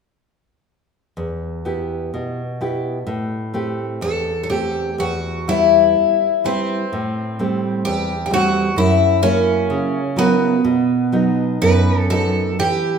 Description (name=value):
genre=fado-style ballad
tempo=63 BPM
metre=2/4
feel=uneven beats, rubato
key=E harmonic minor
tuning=A4 = 441 Hz
part: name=nylon-string guitar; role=accompaniment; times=1.2-13.0 s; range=E2 to B4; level=-19 LUFS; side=right 2 dB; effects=none
part: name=picked twelve-string acoustic guitar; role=melody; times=4.0-13.0 s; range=B3 to B4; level=-18 LUFS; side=left 2 dB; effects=none
room=wet recital hall reverb, RT60 1.4 s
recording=minimal, uncompressed stereo recording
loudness=-16 LUFS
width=side -6 dB against mid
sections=1.2-5.0 A section; 5.0-13.0 B section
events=none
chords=1.2 Em; 3.1 Am7; 5.0 Em; 6.9 Am7; 8.8 F#7; 10.6 B